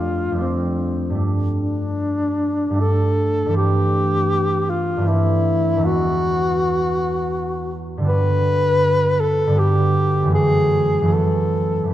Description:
classical, impressionist duo for alto saxophone and harp; 68-83 BPM; 3/4; rubato; A4 = 440 Hz
mellow alto saxophone; melody; 0.0-11.9 s; C4 to B4; -20 LUFS; left 2 dB
concert harp; accompaniment; 0.0-11.9 s; E2 to F#4; -19 LUFS; right 1 dB
wet concert hall reverb, RT60 2.2 s; -17 LUFS; side -13 dB against mid
0.0-11.9 A section
0.0 F69; 1.2 Gsus2; 3.6 D9sus4/G; 5.9 Eadd9; 8.1 Gmaj7; 10.3 F#m7

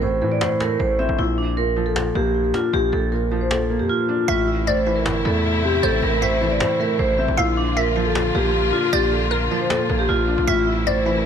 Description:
hip hop, trap; 155 BPM; 4/4; half-time; A phrygian; A4 = 440 Hz
vibraphone with medium mallets; melody; 0.0-11.3 s; D4 to E5; -21 LUFS; moving between left 4 dB and right 3 dB; auto-pan, low-pass filter, tape echo
felt-muted upright piano; accompaniment; 0.0-11.3 s; A2 to D4; -25 LUFS; right 1 dB; low-pass filter
distorted 808-style bass; bass; 0.0-11.3 s; G1 to A2; -24 LUFS; equal; distortion
cajon; drums; 0.0-11.1 s; -27 LUFS; equal
glassy wavetable pluck; second line; 4.3-11.3 s; Bb4 to F5; -27 LUFS; right 1 dB; chorus, tape echo
warm symphonic string section; sustained chords; 4.3-11.3 s; C3 to F4; -26 LUFS; left 2 dB
light reverb, small room ambience; -18 LUFS; side -8 dB against mid
0.0-4.3 A section; 4.3-11.3 B section
drums muted 3.9-4.3
0.0 Am; 1.2 Bb; 4.3 Am; 7.4 Bb; 10.5 Am

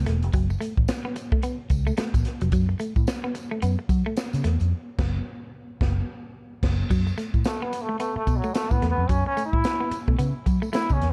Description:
funk; 110 BPM; 4/4; swing 60% on 16ths; F# minor; A4 = 440 Hz
vintage muted fingered electric bass; bass; 0.0-11.1 s; E1 to F#3; -26 LUFS; equal
semi-hollow electric guitar; riff; 0.1-10.9 s; F#3 to B3; -33 LUFS; equal
swinging big-band drum kit; drums; 0.1-11.1 s; crash cymbal, hi-hat, kick drum, snare drum; -28 LUFS; equal
tambourine; percussion; 0.3-11.0 s; -51 LUFS; equal
brilliant trombone; melody; 7.5-11.1 s; F#3 to E4; -30 LUFS; equal; tape echo
little or no reverb; cassette tape; -25 LUFS; mono
0.0-6.9 A section; 6.9-11.1 B section
band accent 4.7-6.9; trombone solo 6.9-11.1
0.0 F#m

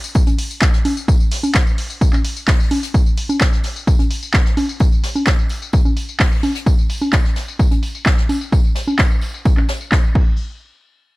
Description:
house; 129 BPM; 4/4; straight
punchy analog drum machine; drums; 0.0-10.2 s; congas, crash cymbal, handclaps, hi-hat, tambourine; -21 LUFS; equal; low-pass filter on snare, low-pass filter on perc, low-pass filter on hats, low-pass filter on cymbals, low-pass filter on room
jazz brush drum kit; drums; 0.1-10.0 s; hi-hat, snare drum, tambourine; -31 LUFS; left 1 dB; sidechain pumping on hats, high-pass filter on hats, high-pass filter on snare, sidechain pumping on perc, high-pass filter on perc, high-pass filter on room
electronic kick drum; drums; 0.2-10.2 s; -14 LUFS; equal
little or no reverb; dark, warm production; -14 LUFS; side -21 dB against mid
0.0-10.4 A section

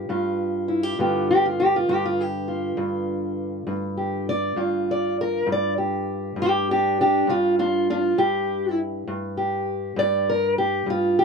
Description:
acoustic country blues, solo or duo; 67 BPM (dotted quarters); 12/8; straight; G mixolydian; A4 = 440 Hz
fingerpicked steel-string acoustic guitar; solo; 0.0-11.2 s; G2 to D5; -21 LUFS; equal
moderate booth ambience, RT60 0.2 s; -21 LUFS; side -5 dB against mid
1.0-11.2 A section
steel-string acoustic guitar solo 1.0-11.2
0.0 G7

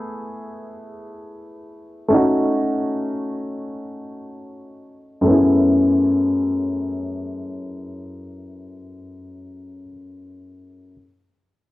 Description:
hip hop; free time; F# dorian; A4 = 440 Hz
warm upright piano; accompaniment; 0.0-10.9 s; F#2 to G#4; -20 LUFS; left 1 dB; cassette tape, low-pass filter, plate reverb
wet studio reverb, RT60 0.5 s; -17 LUFS; side -17 dB against mid
0.0-5.3 A section; 5.3-8.4 B section
filter sweep on upright piano 0.0-5.3
0.0 Eadd11/A; 2.1 F#m6/A; 5.3 F#m11

